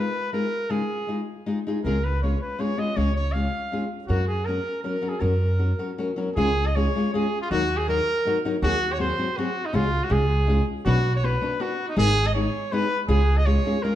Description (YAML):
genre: mexican folk, mariachi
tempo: 160 BPM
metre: 3/4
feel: straight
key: unclear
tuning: A4 = 440 Hz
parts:
  - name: bright trumpet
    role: melody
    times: 0.0-14.0 s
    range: D#4 to E#5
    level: -26 LUFS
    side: right 1 dB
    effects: none
  - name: flamenco guitar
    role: accompaniment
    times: 0.0-13.9 s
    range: G#2 to B4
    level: -26 LUFS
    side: left 2 dB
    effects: none
  - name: upright bass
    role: bass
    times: 1.8-13.6 s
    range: G#1 to F#2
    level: -23 LUFS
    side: right 1 dB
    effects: none
room: moderate recital hall reverb, RT60 1.4 s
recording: dark, warm production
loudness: -21 LUFS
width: side -12 dB against mid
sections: 0.0-6.4 A section; 6.4-14.0 B section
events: none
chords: 0.0 C#add9 (rootless); 1.8 C#; 4.1 F#; 6.4 C#; 7.5 D#m; 8.6 G#7/D#; 9.7 C#sus4; 10.1 C#; 10.8 Bm; 12.0 G#m; 13.1 C#